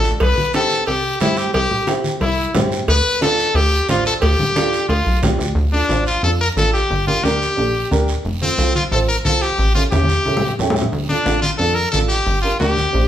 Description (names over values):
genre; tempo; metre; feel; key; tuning
latin, cumbia; 179 BPM; 4/4; straight; D dorian, D minor from 5.6 s; A4 = 440 Hz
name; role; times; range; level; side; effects
brilliant trumpet; melody; 0.0-13.1 s; C4 to B4; -19 LUFS; left 2 dB; none
dark upright piano; accompaniment; 0.0-13.1 s; C4 to G5; -23 LUFS; right 3 dB; none
plucky analog bass; bass; 0.0-13.1 s; F1 to G2; -20 LUFS; equal; none
guiro; percussion; 0.0-13.1 s; none; -31 LUFS; right 4 dB; none
congas; percussion; 0.2-13.1 s; none; -25 LUFS; left 1 dB; none
cowbell and timbales; percussion; 0.2-5.4 s; none; -25 LUFS; right 1 dB; none
room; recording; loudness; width
moderate large studio reverb, RT60 1.1 s; band playing live in one room; -15 LUFS; side -11 dB against mid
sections
0.0-5.6 A section; 5.6-13.1 B section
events
drum fill 9.9-10.9; upright piano fill 10.4-10.9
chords
0.2 C; 2.9 Dm; 6.9 Gm; 8.2 F; 9.6 A7; 10.9 Dm; 12.3 Gm